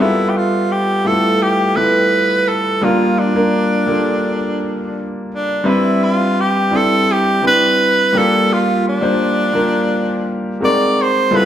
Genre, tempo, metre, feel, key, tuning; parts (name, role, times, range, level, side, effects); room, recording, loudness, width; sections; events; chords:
soul; 85 BPM; 4/4; straight; A4 = 440 Hz
breathy tenor saxophone; melody; 0.0-11.5 s; D4 to D5; -16 LUFS; right 1 dB
clear concert grand piano; accompaniment; 0.0-11.5 s; G3 to E5; -16 LUFS; left 1 dB
wet large studio reverb, RT60 1.2 s; band playing live in one room; -13 LUFS; side -10 dB against mid
0.0-11.5 A section
0.0 G13; 2.8 Bb6; 5.7 Cmaj9; 8.1 Bb6; 10.6 Ab9